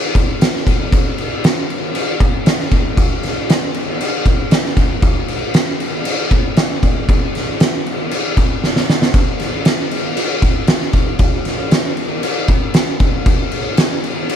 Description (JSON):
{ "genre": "rock", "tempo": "117 BPM", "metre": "4/4", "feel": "straight", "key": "none", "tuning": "none", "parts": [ { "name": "oversized low-tuned drum kit", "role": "drums", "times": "0.2-14.4 s", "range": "crash cymbal, kick drum, snare drum", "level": "-14 LUFS", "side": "equal", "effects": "none" } ], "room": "little or no reverb", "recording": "none", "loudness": "-14 LUFS", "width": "side -9 dB against mid", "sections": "0.0-14.4 A section", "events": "drum fill 8.6-9.1", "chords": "none" }